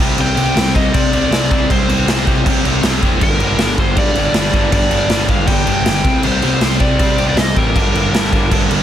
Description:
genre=punk rock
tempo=158 BPM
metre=4/4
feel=straight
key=unclear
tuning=A4 = 440 Hz
part: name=distorted electric guitar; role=riff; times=0.0-8.8 s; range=G2 to C4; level=-18 LUFS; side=equal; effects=distortion
part: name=fuzz picked electric bass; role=bass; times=0.0-8.8 s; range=F1 to C3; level=-19 LUFS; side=equal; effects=overdrive
part: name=raw garage drum kit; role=drums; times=0.0-8.8 s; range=crash cymbal, kick drum, snare drum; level=-16 LUFS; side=equal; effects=none
part: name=biting overdriven guitar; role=melody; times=0.2-8.8 s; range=Bb4 to G5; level=-20 LUFS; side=left 1 dB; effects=tape echo
room=little or no reverb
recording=dense, heavily limited modern master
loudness=-12 LUFS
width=side -10 dB against mid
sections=0.0-8.8 A section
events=none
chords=0.0 C5; 3.2 G5; 6.0 C5; 7.8 Gm

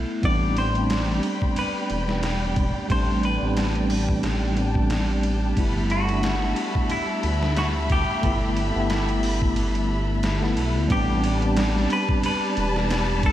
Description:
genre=trip hop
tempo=90 BPM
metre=4/4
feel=swing 56% on 16ths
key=A minor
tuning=A4 = 440 Hz
part: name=bright tine electric piano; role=accompaniment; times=0.0-13.3 s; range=G3 to E4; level=-26 LUFS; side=equal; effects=medium stereo tremolo, harmonic tremolo, tape echo
part: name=dark detuned saw bass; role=bass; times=0.0-13.3 s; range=E1 to D2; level=-25 LUFS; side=equal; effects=none
part: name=dark symphonic string section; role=sustained chords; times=0.2-13.3 s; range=G3 to B5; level=-30 LUFS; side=left 1 dB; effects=none
part: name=trip hop sampler-style drum kit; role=drums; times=0.2-13.3 s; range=hi-hat, kick drum, ride cymbal, snare drum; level=-27 LUFS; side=equal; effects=none
part: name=semi-hollow electric guitar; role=melody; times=0.3-13.3 s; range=E4 to D5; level=-29 LUFS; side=left 1 dB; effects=tape echo
room=moderate plate reverb, RT60 3.1 s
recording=dreamy mix soaked in reverb, vinyl crackle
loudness=-20 LUFS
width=side -12 dB against mid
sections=0.0-10.9 A section; 10.9-13.3 B section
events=kick drops out 9.6-10.9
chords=0.2 Am11; 5.6 G69; 10.9 Am11

